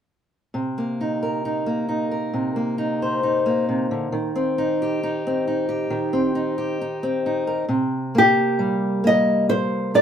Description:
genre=acoustic folk-pop ballad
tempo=67 BPM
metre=4/4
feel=straight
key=C minor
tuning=A4 = 440 Hz
part: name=fingerpicked steel-string acoustic guitar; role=accompaniment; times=0.5-10.0 s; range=C3 to C5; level=-21 LUFS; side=equal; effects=none
part: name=nylon-string guitar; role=melody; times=8.2-10.0 s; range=G4 to Eb5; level=-17 LUFS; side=equal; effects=none
room=moderate small room reverb, RT60 0.6 s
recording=band playing live in one room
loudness=-20 LUFS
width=side -8 dB against mid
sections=0.5-7.7 A section; 7.7-10.0 B section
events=none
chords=0.5 Cm7; 4.1 Eb6; 7.7 C5

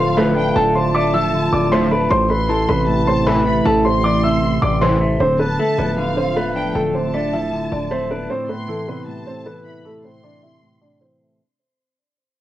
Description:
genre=hip hop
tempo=155 BPM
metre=4/4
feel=half-time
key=D dorian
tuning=A4 = 439 Hz
part: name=dark baby grand piano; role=melody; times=0.0-11.4 s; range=A3 to E6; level=-19 LUFS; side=equal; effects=low-pass filter, cassette tape
part: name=warm studio violin section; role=second line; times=0.0-11.0 s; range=F5 to C6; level=-28 LUFS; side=equal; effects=cassette tape, tape echo
part: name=semi-hollow electric guitar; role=accompaniment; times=0.0-11.4 s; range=A2 to D4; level=-22 LUFS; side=equal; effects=low-pass filter, cassette tape
part: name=dark analog pad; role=sustained chords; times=0.0-11.4 s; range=C3 to F4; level=-24 LUFS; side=right 2 dB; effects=chorus, low-pass filter, cassette tape
part: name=distorted 808-style bass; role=bass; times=0.0-8.3 s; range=D1 to A1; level=-24 LUFS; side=equal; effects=distortion
part: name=sync-sweep polysynth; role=stabs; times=0.2-5.0 s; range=C2 to F3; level=-21 LUFS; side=equal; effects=chorus, cassette tape
room=light reverb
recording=home recording on cassette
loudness=-15 LUFS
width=side -13 dB against mid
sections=0.0-5.2 A section; 5.2-11.4 B section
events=fade-out 5.2-11.4; filter sweep 5.2-11.4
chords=0.0 Dm; 2.1 Am; 5.2 Dm; 8.3 Am

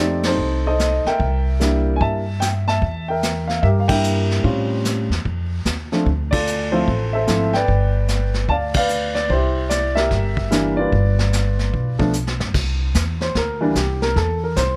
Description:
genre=jazz piano trio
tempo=148 BPM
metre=4/4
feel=swing 64% on 8ths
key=C mixolydian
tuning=A4 = 440 Hz
part: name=warm upright piano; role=melody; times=0.0-14.8 s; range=E3 to A5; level=-23 LUFS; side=equal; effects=plate reverb
part: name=upright bass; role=bass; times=0.0-14.8 s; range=G1 to A2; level=-23 LUFS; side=equal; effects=none
part: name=vintage brush drum kit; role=drums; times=0.2-14.8 s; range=brushed snare drum, crash cymbal, hi-hat, kick drum, ride cymbal, snare drum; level=-27 LUFS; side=equal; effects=none
room=light reverb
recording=close, detailed microphones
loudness=-20 LUFS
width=mono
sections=0.0-12.5 A section; 12.5-14.8 B section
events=band accent 0.2, 3.8, 6.3, 8.7; drum fill 12.1-12.5; upright piano solo 12.5-14.8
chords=0.0 F7; 1.2 C7; 4.4 A7alt; 6.1 Dm7; 7.7 G7; 9.3 C7; 10.9 G7; 12.5 C7

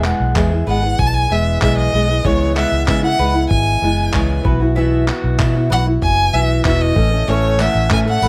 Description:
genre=acoustic pop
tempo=95 BPM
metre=4/4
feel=straight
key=E major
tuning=A4 = 440 Hz
part: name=fingerpicked steel-string acoustic guitar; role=accompaniment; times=0.0-8.3 s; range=E2 to A4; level=-22 LUFS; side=equal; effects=none
part: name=mandolin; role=arpeggios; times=0.0-8.3 s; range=B4 to F#5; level=-28 LUFS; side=equal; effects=none
part: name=vintage muted fingered electric bass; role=bass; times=0.0-8.3 s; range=E1 to C#3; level=-20 LUFS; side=equal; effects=none
part: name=dusty soul sampler-style drum kit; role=drums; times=0.0-8.3 s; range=handclaps, kick drum, tambourine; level=-23 LUFS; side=equal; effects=none
part: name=clear violin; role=melody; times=0.7-8.3 s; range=C#5 to A5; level=-21 LUFS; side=equal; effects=none
room=light reverb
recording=none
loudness=-16 LUFS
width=mono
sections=0.0-8.3 A section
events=none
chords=0.0 E; 2.2 C#m7; 4.4 Bsus4; 7.0 A

